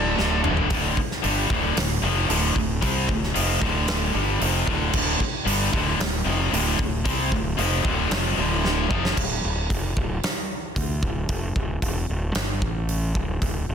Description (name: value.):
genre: hard rock.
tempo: 113 BPM.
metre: 4/4.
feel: straight.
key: D minor.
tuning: A4 = 443 Hz.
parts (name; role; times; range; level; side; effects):
cranked stack guitar; riff; 0.0-9.2 s; D2 to C4; -28 LUFS; right 11 dB; overdrive.
tight distorted guitar; riff; 0.0-9.2 s; D2 to C4; -26 LUFS; left 13 dB; distortion.
fuzz fingered electric bass; bass; 0.0-13.7 s; D1 to D2; -26 LUFS; equal; overdrive.
huge arena drum kit; drums; 0.2-13.5 s; crash cymbal, hi-hat, kick drum, snare drum, toms; -26 LUFS; equal; none.
room: light reverb, small room ambience.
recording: dense, heavily limited modern master.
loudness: -21 LUFS.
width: side -7 dB against mid.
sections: 0.7-9.2 A section; 9.2-13.7 B section.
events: drum fill 0.2-0.7, 8.6-9.2.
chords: 0.0 D5; 0.7 Dm; 12.6 N.C..